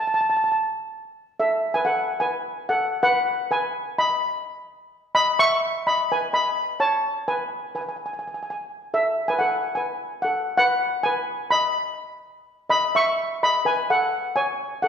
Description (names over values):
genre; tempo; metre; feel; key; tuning
calypso; 127 BPM; 4/4; straight; E major; A4 = 440 Hz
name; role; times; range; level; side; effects
steel pan; solo; 0.0-14.9 s; A4 to C#6; -21 LUFS; equal; none
room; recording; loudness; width
wet scoring stage reverb, RT60 1.6 s; recorded in a church or concert hall; -20 LUFS; side -8 dB against mid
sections
0.0-1.4 A section; 1.4-14.9 B section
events
none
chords
0.0 N.C.; 1.4 F#m11/A; 3.3 G#m; 5.2 E5; 7.1 Amaj7sus2/B; 8.9 F#m11/A; 10.8 G#m; 12.7 E5